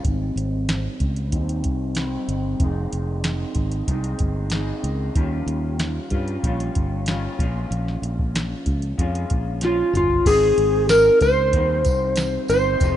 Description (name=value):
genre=indie pop, bedroom pop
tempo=94 BPM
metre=4/4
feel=straight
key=Ab major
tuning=A4 = 440 Hz
part: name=electric guitar through a small old amp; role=accompaniment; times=0.0-13.0 s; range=F2 to F4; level=-28 LUFS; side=equal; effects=lush chorus, vibrato effect, low-pass filter
part: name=fingered electric bass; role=bass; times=0.0-13.0 s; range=F1 to G2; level=-25 LUFS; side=equal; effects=none
part: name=soft vintage rhythm box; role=drums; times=0.0-13.0 s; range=crash cymbal, hi-hat, kick drum, snare drum, toms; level=-24 LUFS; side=equal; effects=none
part: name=electric slide guitar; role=melody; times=9.6-13.0 s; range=F4 to C5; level=-17 LUFS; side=equal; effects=lush chorus
part: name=tambourine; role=percussion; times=10.3-13.0 s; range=none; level=-37 LUFS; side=right 4 dB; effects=none
room=digital ambience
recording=rough home demo mix, nothing above 10.5 kHz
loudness=-19 LUFS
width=side -11 dB against mid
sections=0.0-10.3 A section; 10.3-13.0 B section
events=filter sweep on clean electric guitar 0.0-10.3; drum fill 9.6-10.3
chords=0.0 Abmaj7; 2.6 Fm7; 5.2 Eb9; 7.4 Bbm7; 10.3 Abmaj7